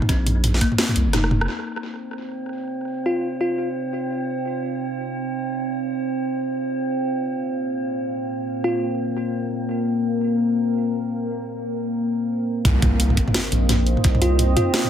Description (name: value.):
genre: half-time drum and bass.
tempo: free time.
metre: none.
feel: none.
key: C minor.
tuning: A4 = 440 Hz.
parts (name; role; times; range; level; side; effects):
kalimba; arpeggios; 0.0-1.3 s; Bb3 to Eb4; -28 LUFS; left 4 dB; analog delay.
drum and bass drum kit; drums; 0.0-1.5, 12.7-14.9 s; hi-hat, rim click, snare drum, toms; -23 LUFS; equal; tape echo.
saturated sub bass; bass; 0.1-1.5, 12.7-14.6 s; F1 to C2; -20 LUFS; equal; none.
electronic kick drum; drums; 0.1-0.7, 12.7-14.1 s; none; -19 LUFS; equal; none.
deep dark ambient pad; sustained chords; 2.7-14.9 s; Bb3 to G5; -25 LUFS; left 2 dB; chorus, built-in reverb, sidechain pumping.
metallic inharmonic drone; texture; 2.0-12.7 s; C4; -27 LUFS; right 2 dB; chorus, built-in reverb.
bell-like FM electric piano; melody; 3.1-3.7, 8.6-8.9, 14.2-14.8 s; F4; -26 LUFS; left 1 dB; chorus, tape echo.
impact; sound effects; 12.7-14.0 s; none; -28 LUFS; equal; none.
room: moderate spring reverb, RT60 1.4 s.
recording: echo-heavy mix.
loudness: -20 LUFS.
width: side -9 dB against mid.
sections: 0.0-1.5 A section; 1.5-12.7 B section; 12.7-14.9 C section.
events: kick drops out 1.1-1.5; drum fill 1.1-1.5; band accent 1.4; filter sweep on ambient pad 1.5-12.7; drop 12.7-14.9; impact 12.7-14.0.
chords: 0.0 Bb5; 1.5 Cm; 7.1 Bb5; 12.7 Cm.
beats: free time.